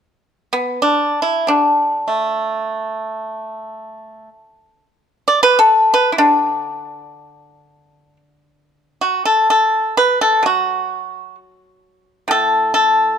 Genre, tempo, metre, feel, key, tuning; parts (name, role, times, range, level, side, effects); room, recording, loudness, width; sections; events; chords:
chinese traditional; free time; D gong mode; A4 = 440 Hz
pipa; solo; 0.5-13.2 s; A2 to D5; -14 LUFS; equal
light reverb; close, detailed microphones; -14 LUFS; side -7 dB against mid
0.0-8.5 A section; 8.5-13.2 B section